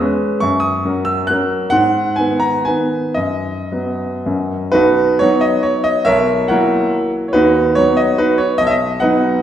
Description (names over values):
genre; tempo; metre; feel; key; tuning
classical, romantic triple-time dance for piano with dotted rhythms; 108-151 BPM; 3/4; rubato; B major; A4 = 442 Hz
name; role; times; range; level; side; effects
clear concert grand piano; solo; 0.0-9.4 s; B1 to F#6; -13 LUFS; equal; none
room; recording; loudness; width
wet recital hall reverb, RT60 1.4 s; recorded in a church or concert hall; -13 LUFS; side -10 dB against mid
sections
0.0-4.7 A section; 4.7-9.4 B section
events
none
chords
0.4 F#; 1.7 G#m; 3.2 B/F#; 4.3 F#; 4.7 B; 6.1 F#7/B; 7.3 B/D#; 8.6 B